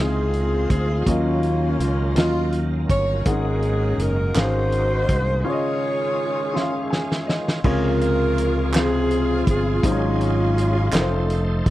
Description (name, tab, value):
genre	slow gospel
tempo	55 BPM (dotted quarters)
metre	6/8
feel	straight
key	Db major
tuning	A4 = 439 Hz
part	warm saxophone section	melody	0.0-11.7 s	Bb3 to Db5	-24 LUFS	equal	none
part	warm grand piano	accompaniment	0.0-11.7 s	Ab2 to C6	-26 LUFS	left 3 dB	none
part	bright tonewheel organ	sustained chords	0.0-11.7 s	Eb3 to C5	-32 LUFS	right 3 dB	fast rotary speaker, overdrive, chorus vibrato
part	fingered electric bass	bass	0.0-11.7 s	F1 to Eb2	-22 LUFS	equal	none
part	warm soul drum kit	drums	0.3-11.7 s	crash cymbal, hi-hat, kick drum, snare drum	-22 LUFS	equal	none
part	group handclap	percussion	4.4-4.7, 8.7-11.3 s	none	-30 LUFS	right 4 dB	none
room	studio ambience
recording	dry, close 1970s-style studio recording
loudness	-18 LUFS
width	side -15 dB against mid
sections	0.0-7.6 A section; 7.6-11.7 B section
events	break 5.5-7.6; grand piano fill 6.5-7.6; drum fill 6.5-7.6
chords	0.0 Dbmaj9; 1.1 Ebm9; 3.3 Ab9sus4; 5.5 Dbmaj9; 7.6 Dbmaj7; 9.8 Ab7sus4; 10.9 F7